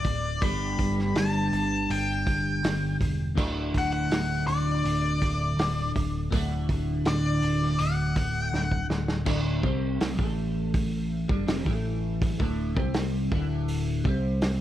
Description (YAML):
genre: psychedelic rock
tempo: 82 BPM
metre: 4/4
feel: straight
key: D mixolydian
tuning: A4 = 445 Hz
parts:
  - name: octave-fuzz lead guitar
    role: melody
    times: 0.0-8.9 s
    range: D5 to B5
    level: -30 LUFS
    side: left 3 dB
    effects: wah, distortion, analog delay
  - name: twelve-string electric guitar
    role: riff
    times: 0.0-14.6 s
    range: D2 to G4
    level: -28 LUFS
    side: equal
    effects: rotary speaker, double-tracked left and right
  - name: vintage drum kit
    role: drums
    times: 0.0-14.6 s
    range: crash cymbal, hi-hat, kick drum, snare drum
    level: -29 LUFS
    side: right 1 dB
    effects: none
  - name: picked electric bass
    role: bass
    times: 0.1-14.6 s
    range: D1 to C2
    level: -31 LUFS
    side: right 1 dB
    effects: none
room: small room ambience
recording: none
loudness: -24 LUFS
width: side -12 dB against mid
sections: 0.0-9.3 A section; 9.3-14.6 B section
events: drum fill 8.5-9.3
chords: 0.4 G; 3.4 D; 9.3 D5; 10.2 A5; 11.3 Fsus2; 11.7 A5; 12.4 D5; 14.0 C5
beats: | 0.41 1.15 1.89 2.63 | 3.37 4.10 4.84 5.58 | 6.32 7.05 7.79 8.52 | 9.26 10.00 10.73 11.47 | 12.21 12.94 13.68 14.41